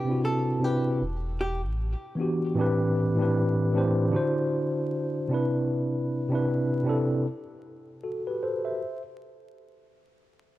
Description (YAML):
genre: lo-fi hip hop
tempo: 77 BPM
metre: 4/4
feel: swing 59% on 16ths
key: unclear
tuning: A4 = 439 Hz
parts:
  - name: archtop guitar, miked and amplified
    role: melody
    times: 0.0-1.6 s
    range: G4 to A4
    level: -34 LUFS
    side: equal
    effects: tape echo
  - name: mellow tine electric piano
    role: accompaniment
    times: 0.0-9.0 s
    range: A2 to E5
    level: -25 LUFS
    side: equal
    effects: medium stereo tremolo
  - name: sub bass with octave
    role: bass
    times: 1.0-2.0 s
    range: E1 to A1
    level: -30 LUFS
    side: equal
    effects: transformer saturation
room: light reverb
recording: dry, gritty hardware recording, vinyl crackle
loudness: -24 LUFS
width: side -15 dB against mid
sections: 0.0-8.8 A section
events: none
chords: 0.0 Cmaj7; 1.0 Em9; 2.6 Am11; 4.1 D9; 5.3 Cmaj7; 7.2 N.C.